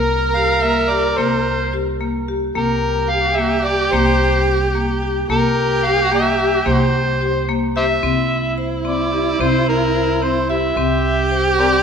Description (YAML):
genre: contemporary instrumental, chamber music in an uneven meter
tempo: 219 BPM (eighths)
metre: 5/8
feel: straight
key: C mixolydian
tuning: A4 = 439 Hz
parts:
  - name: overdriven harmonica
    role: melody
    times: 0.0-11.8 s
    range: G4 to F5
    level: -20 LUFS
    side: left 1 dB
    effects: none
  - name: warm viola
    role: second line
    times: 0.0-11.8 s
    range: E4 to Bb4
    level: -20 LUFS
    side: right 2 dB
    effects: none
  - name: marimba with hard mallets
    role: arpeggios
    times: 0.0-11.8 s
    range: Bb3 to C5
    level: -21 LUFS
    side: left 4 dB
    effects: none
  - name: upright bass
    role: bass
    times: 0.0-11.8 s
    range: C2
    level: -22 LUFS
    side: right 2 dB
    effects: none
room: moderate recital hall reverb, RT60 1.5 s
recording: none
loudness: -15 LUFS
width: side -6 dB against mid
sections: 0.0-8.0 A section; 8.0-11.8 B section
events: none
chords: 0.0 C7(no3); 8.0 C5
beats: 0.09 0.36 0.64 0.91 | 1.19 1.46 1.74 2.01 2.28 | 2.56 2.83 3.11 3.38 3.65 | 3.93 4.20 4.47 4.75 5.02 | 5.30 5.57 5.84 6.12 6.39 | 6.66 6.94 7.21 7.49 7.76 | 8.03 8.30 8.58 8.85 9.13 | 9.40 9.67 9.95 10.22 10.49 | 10.77 11.04 11.31 11.59